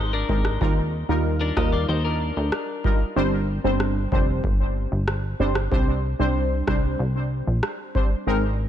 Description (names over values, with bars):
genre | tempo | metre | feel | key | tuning
dancehall | 94 BPM | 4/4 | straight | unclear | A4 = 441 Hz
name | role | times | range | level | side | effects
twelve-string electric guitar | arpeggios | 0.0-3.0 s | D4 to Eb5 | -30 LUFS | left 5 dB | wide subtle chorus, analog delay
plucky analog bass | bass | 0.0-8.7 s | F1 to Eb2 | -24 LUFS | equal | none
synth brass stab | accompaniment | 0.3-8.4 s | G3 to C5 | -26 LUFS | right 1 dB | chorus, sidechain pumping, analog delay
booming analog drum machine | drums | 0.3-8.1 s | kick drum, rim click | -24 LUFS | equal | none
room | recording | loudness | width
light reverb | echo-heavy mix | -21 LUFS | side -10 dB against mid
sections
0.0-8.7 A section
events
none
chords
0.0 Abadd9; 0.6 Ebadd9; 3.2 Gsus4; 5.7 Csus2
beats
| 0.61 1.25 1.89 2.52 | 3.16 3.80 4.44 5.08 | 5.72 6.36 6.99 7.63 | 8.27